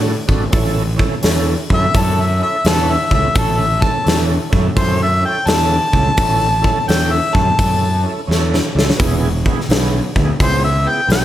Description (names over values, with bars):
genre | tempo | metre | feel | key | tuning
blues rock power trio and southern rock | 85 BPM | 4/4 | swing 66% on 8ths | A major | A4 = 440 Hz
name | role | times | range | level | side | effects
overdriven tonewheel organ | sustained chords | 0.0-11.2 s | B3 to B4 | -24 LUFS | right 5 dB | chorus vibrato, slow rotary speaker
fuzz fingered electric bass | bass | 0.0-11.2 s | E1 to A2 | -18 LUFS | equal | overdrive
big rock drum kit | drums | 0.3-11.2 s | hi-hat, kick drum, snare drum | -17 LUFS | equal | none
warm harmonica | melody | 1.7-11.2 s | A4 to A5 | -18 LUFS | left 2 dB | overdrive, plate reverb
room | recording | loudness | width
light reverb | none | -13 LUFS | side -12 dB against mid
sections
0.0-11.2 A section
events
harmonica solo 0.0-11.2; drum fill 8.3-9.0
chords
0.0 D; 0.5 A; 9.0 E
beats
| 0.54 1.25 1.95 2.66 | 3.36 4.07 4.77 5.48 | 6.18 6.88 7.58 8.29 | 8.99 9.69 10.39 11.10